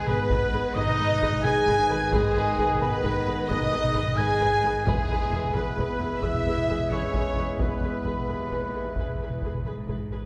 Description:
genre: cinematic, epic orchestral film score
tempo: 88 BPM (dotted quarters)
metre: 12/8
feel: straight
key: unclear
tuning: A4 = 440 Hz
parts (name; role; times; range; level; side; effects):
- warm symphonic violin section; melody; 0.0-9.6 s; Ab4 to Ab5; -38 LUFS; equal; none
- concert flute; second line; 0.0-9.6 s; G#5 to Ab6; -36 LUFS; equal; none
- rich studio violin section; second line; 0.0-9.6 s; Ab4 to Ab5; -37 LUFS; equal; none
- mellow French horn section; sustained chords; 0.0-9.7 s; G#3 to Ab4; -32 LUFS; equal; none
- mellow trombone section; sustained chords; 0.0-10.1 s; Eb3 to E4; -40 LUFS; equal; none
- warm woodwind section; sustained chords; 0.0-10.1 s; B3 to E5; -38 LUFS; equal; none
- bright trumpet section; stabs; 0.0-9.6 s; Ab4 to Ab5; -34 LUFS; equal; none
- rich symphonic viola section; accompaniment; 0.1-10.2 s; Ab4 to Cb5; -39 LUFS; equal; none
- rich symphonic cello section; bass; 0.1-10.3 s; Eb2 to Ab2; -37 LUFS; equal; none
- rich symphonic double bass section; bass; 0.1-10.2 s; E1 to Ab1; -36 LUFS; equal; none
- taiko ensemble; drums; 0.1-10.3 s; none; -33 LUFS; equal; none
room: wet scoring stage reverb, RT60 1.7 s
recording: recorded in a church or concert hall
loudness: -25 LUFS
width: mono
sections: 0.0-10.3 A section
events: none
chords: 0.0 Abm; 4.9 E

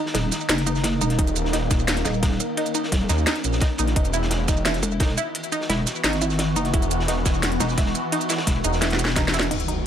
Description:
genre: dark technical drum and bass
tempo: 173 BPM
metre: 4/4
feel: straight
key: unclear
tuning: A4 = 440 Hz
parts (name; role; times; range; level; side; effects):
- swarming drone; sustained chords; 0.0-9.9 s; Eb3 to Gb4; -29 LUFS; left 1 dB; built-in reverb, phaser, sidechain pumping
- analog pluck; arpeggios; 0.0-9.7 s; Eb4 to E4; -28 LUFS; right 2 dB; chorus, phaser, cassette tape, sidechain pumping, ping-pong delay
- pulsing pluck wobble bass; bass; 0.1-8.6 s; Eb1 to G#1; -24 LUFS; equal; chorus
- crunchy breakbeat drum kit; drums; 0.1-9.4 s; ride cymbal, snare drum; -31 LUFS; equal; high-pass filter on cymbals, high-pass filter on snare, high-pass filter on room
- drum and bass drum kit; drums; 0.1-9.8 s; crash cymbal, hi-hat, rim click, shaker, snare drum; -25 LUFS; equal; none
- wide detuned saw bass; bass; 1.2-9.9 s; Eb1 to Eb2; -24 LUFS; equal; chorus, overdrive
- electronic kick drum; drums; 1.2-9.2 s; none; -22 LUFS; equal; none
- impact; sound effects; 9.5-9.9 s; none; -28 LUFS; equal; none
room: light reverb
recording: none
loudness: -20 LUFS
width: side -9 dB against mid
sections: 0.0-9.5 A section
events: filter sweep on synth arpeggio sound 0.0-9.5; drum fill 8.8-9.5; impact 9.5-9.9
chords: 0.0 Ebm; 4.0 E5

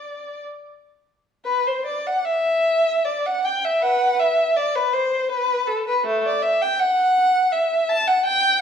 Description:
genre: classical, free, expressive piece for unaccompanied violin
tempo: 51-87 BPM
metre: 3/4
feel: rubato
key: unclear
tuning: A4 = 439 Hz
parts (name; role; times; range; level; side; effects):
- rich violin; solo; 0.0-8.6 s; A3 to A5; -18 LUFS; equal; none
room: wet stone room reverb, RT60 1.2 s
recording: dark, warm production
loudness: -18 LUFS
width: side -8 dB against mid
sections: 0.0-1.5 A section; 1.5-8.6 B section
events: none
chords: none

